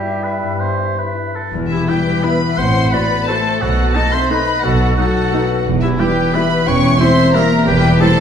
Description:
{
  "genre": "classical, orchestral ballroom waltz",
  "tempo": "154-190 BPM",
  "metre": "3/4",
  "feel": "rubato",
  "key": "E minor",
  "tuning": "A4 = 440 Hz",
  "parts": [
    { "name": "silver concert flute", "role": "second line", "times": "0.0-8.2 s", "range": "G4 to G5", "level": "-23 LUFS", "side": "left 2 dB", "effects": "none" },
    { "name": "warm oboe", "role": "second line", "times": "0.0-8.2 s", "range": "E4 to C#5", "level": "-21 LUFS", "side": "right 2 dB", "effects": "none" },
    { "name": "warm bassoon", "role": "accompaniment", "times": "0.0-1.2 s", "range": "G3", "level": "-24 LUFS", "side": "right 2 dB", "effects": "none" },
    { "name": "concert harp", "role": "arpeggios", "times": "0.0-8.2 s", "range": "E2 to E5", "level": "-21 LUFS", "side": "left 5 dB", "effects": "none" },
    { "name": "rich studio double bass section", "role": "bass", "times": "1.5-7.9 s", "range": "E1 to B1", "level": "-20 LUFS", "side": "right 2 dB", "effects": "none" },
    { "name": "warm studio cello section", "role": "bass", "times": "1.5-7.9 s", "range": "E2 to B2", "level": "-21 LUFS", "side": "right 2 dB", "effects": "none" },
    { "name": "warm studio violin section", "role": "melody", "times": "1.7-8.2 s", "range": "E5 to C#6", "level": "-22 LUFS", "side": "left 3 dB", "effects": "none" },
    { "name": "rich studio violin section", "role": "second line", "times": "1.7-8.2 s", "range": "E4 to C#5", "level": "-24 LUFS", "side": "left 1 dB", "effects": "none" },
    { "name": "warm French horn section", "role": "sustained chords", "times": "1.7-8.2 s", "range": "E3 to C#4", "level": "-21 LUFS", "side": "left 3 dB", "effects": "none" },
    { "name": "rich studio viola section", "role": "accompaniment", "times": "1.9-8.1 s", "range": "G3 to F#4", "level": "-23 LUFS", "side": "right 1 dB", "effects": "none" }
  ],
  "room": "wet recital hall reverb, RT60 1.4 s",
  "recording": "recorded in a church or concert hall",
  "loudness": "-13 LUFS",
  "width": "side -8 dB against mid",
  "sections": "0.0-1.5 A section; 1.5-8.2 A section",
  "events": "none",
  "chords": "0.0 Em/G; 1.5 Em; 2.6 F#dim/A; 3.6 B7; 5.7 Em; 6.7 Edim7; 7.7 Em"
}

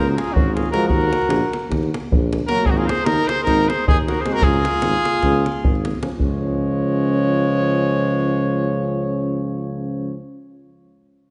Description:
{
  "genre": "balkan folk, Balkan brass band",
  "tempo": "305 BPM (eighths)",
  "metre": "9/8",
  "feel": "straight",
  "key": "Db major",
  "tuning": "A4 = 440 Hz",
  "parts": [
    { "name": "mellow trumpet", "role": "melody", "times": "0.0-10.2 s", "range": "Gb4 to Db5", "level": "-25 LUFS", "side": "equal", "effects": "none" },
    { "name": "clear alto saxophone", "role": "second line", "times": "0.0-10.2 s", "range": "Ab3 to Ab4", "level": "-29 LUFS", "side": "equal", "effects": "none" },
    { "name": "mellow tuba", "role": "bass", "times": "0.0-10.2 s", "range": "Ab1 to Eb2", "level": "-24 LUFS", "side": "equal", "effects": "none" },
    { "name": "davul", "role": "percussion", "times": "0.2-6.4 s", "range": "none", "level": "-24 LUFS", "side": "equal", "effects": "none" },
    { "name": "warm euphonium", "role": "accompaniment", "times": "0.7-10.2 s", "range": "Ab3 to Db4", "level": "-30 LUFS", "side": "equal", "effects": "none" },
    { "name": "warm trombone", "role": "accompaniment", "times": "0.7-10.2 s", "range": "F3 to Ab3", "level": "-31 LUFS", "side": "equal", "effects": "none" }
  ],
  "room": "wet concert hall reverb, RT60 2.3 s",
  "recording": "nothing above 10.7 kHz",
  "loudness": "-19 LUFS",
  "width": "mono",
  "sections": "0.0-6.2 A section; 6.2-9.8 B section",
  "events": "none",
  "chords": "0.0 Db; 0.9 Ebm; 2.7 Ab; 4.4 Db"
}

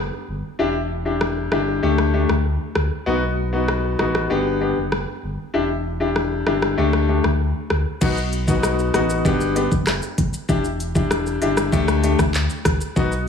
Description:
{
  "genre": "dancehall",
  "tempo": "97 BPM",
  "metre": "4/4",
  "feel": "straight",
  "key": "E minor",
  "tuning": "A4 = 442 Hz",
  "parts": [
    { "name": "sub bass with octave", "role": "bass", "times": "0.0-13.3 s", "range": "E1 to D2", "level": "-24 LUFS", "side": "equal", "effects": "none" },
    { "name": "clear baby grand piano", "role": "accompaniment", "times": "0.6-13.1 s", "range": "A3 to G4", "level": "-21 LUFS", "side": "left 3 dB", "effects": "none" },
    { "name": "island pop drum kit", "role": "drums", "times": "1.2-13.3 s", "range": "crash cymbal, handclaps, hi-hat, kick drum, rim click, shaker", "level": "-23 LUFS", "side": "equal", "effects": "none" }
  ],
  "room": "moderate plate reverb, RT60 1.7 s, digital ambience",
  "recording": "dreamy mix soaked in reverb, small room ambience",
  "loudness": "-18 LUFS",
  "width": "side -6 dB against mid",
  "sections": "0.0-8.0 A section; 8.0-13.3 B section",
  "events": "none",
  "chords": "0.0 N.C.; 0.6 Em7; 1.8 Dsus4; 3.1 B; 4.3 G; 5.5 Em7; 6.8 Dsus4; 8.0 B; 9.3 G; 10.5 Em7; 11.7 Dsus4"
}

